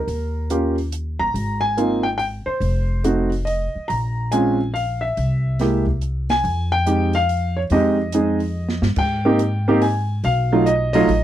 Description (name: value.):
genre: jazz piano trio.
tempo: 142 BPM.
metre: 3/4.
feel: swing 64% on 8ths.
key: F minor.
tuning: A4 = 440 Hz.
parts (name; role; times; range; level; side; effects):
warm concert grand piano; melody; 0.0-11.2 s; F#3 to Bb5; -19 LUFS; right 1 dB; none.
upright bass; bass; 0.0-11.2 s; F1 to Ab2; -22 LUFS; equal; none.
open jazz drum kit; drums; 0.1-11.2 s; crash cymbal, hi-hat, kick drum, snare drum; -30 LUFS; right 2 dB; none.
room: light reverb.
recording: dry, close 1970s-style studio recording.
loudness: -18 LUFS.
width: side -12 dB against mid.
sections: 0.0-9.0 A section; 9.0-11.2 B section.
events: drum fill 8.6-9.0.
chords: 0.1 Eb5; 1.3 Ab; 2.6 F7(no3); 3.9 Bb7(no3); 5.2 Caug; 6.4 Fm9; 9.0 Abmaj9; 10.2 B7#11.